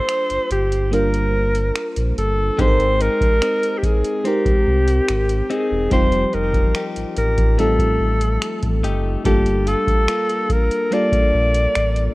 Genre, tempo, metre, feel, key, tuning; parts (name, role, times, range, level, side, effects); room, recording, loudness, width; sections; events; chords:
contemporary R&B; 72 BPM; 4/4; straight; G minor; A4 = 438 Hz
warm alto saxophone; melody; 0.0-12.1 s; G4 to D5; -20 LUFS; equal; digital delay
FM electric piano with soft pad layer; accompaniment; 0.0-12.1 s; G3 to C5; -24 LUFS; right 1 dB; chorus
booming analog drum machine; drums; 0.1-12.1 s; finger snaps, hi-hat, kick drum; -20 LUFS; equal
sub bass with octave; bass; 0.3-12.1 s; E1 to C2; -21 LUFS; equal
direct-recorded clean electric guitar; arpeggios; 2.6-12.1 s; F3 to A4; -27 LUFS; left 4 dB
digital ambience; worn, warbling old tape, cassette tape, warbly pitch drift; -16 LUFS; side -20 dB against mid
0.0-12.1 A section
break 0.0-2.6
0.0 Gm7; 2.6 Abmaj7; 5.9 F9; 9.3 Gm9